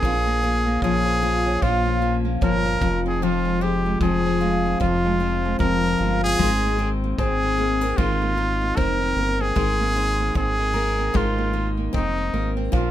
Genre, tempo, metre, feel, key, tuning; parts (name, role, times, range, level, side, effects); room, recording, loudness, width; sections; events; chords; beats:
acoustic pop; 76 BPM; 4/4; swing 60% on 16ths; Ab major; A4 = 442 Hz
brilliant trumpet; melody; 0.0-12.9 s; Eb4 to Bb4; -24 LUFS; right 1 dB
picked steel-string acoustic guitar; accompaniment; 0.0-12.9 s; F2 to Bb4; -24 LUFS; left 4 dB
nylon-string guitar; arpeggios; 0.0-12.9 s; Eb3 to Db4; -29 LUFS; right 7 dB
round analog bass; bass; 0.0-12.9 s; F1 to Bb1; -26 LUFS; equal
kick drum; drums; 0.0-12.9 s; -25 LUFS; equal
light reverb; minimal, uncompressed stereo recording; -19 LUFS; side -12 dB against mid
0.0-12.9 A section
0.0 Bbm; 2.8 Fm; 6.4 Abadd9
| 0.03 0.83 1.62 2.42 | 3.21 4.01 4.80 5.60 | 6.39 7.19 7.98 8.77 | 9.57 10.36 11.15 11.94 | 12.73